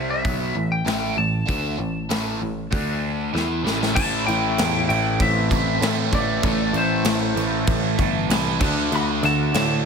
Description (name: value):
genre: hard rock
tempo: 97 BPM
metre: 4/4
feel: straight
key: A minor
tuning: A4 = 440 Hz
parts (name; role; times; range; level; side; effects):
- lightly driven lead guitar; melody; 0.0-9.9 s; C5 to B5; -25 LUFS; left 2 dB; none
- cranked stack guitar; riff; 0.0-9.9 s; A2 to E4; -27 LUFS; right 12 dB; overdrive, phaser
- overdriven semi-hollow guitar; riff; 0.0-9.9 s; A2 to E4; -27 LUFS; left 12 dB; none
- picked electric bass; bass; 0.0-9.8 s; G1 to A2; -26 LUFS; equal; none
- big rock drum kit; drums; 0.2-9.7 s; crash cymbal, hi-hat, kick drum, snare drum; -25 LUFS; equal; none
- distorted electric guitar; riff; 3.9-9.9 s; A2 to D4; -28 LUFS; right 1 dB; distortion
- lead guitar through a small cranked amp; second line; 4.0-9.8 s; A3 to F#4; -32 LUFS; right 1 dB; overdrive
room: studio reverb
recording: none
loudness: -19 LUFS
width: side -6 dB against mid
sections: 0.0-4.0 A section; 4.0-9.9 B section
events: drum fill 3.3-4.0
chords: 0.2 A5; 2.7 D5; 3.3 A5; 4.0 Am; 8.6 D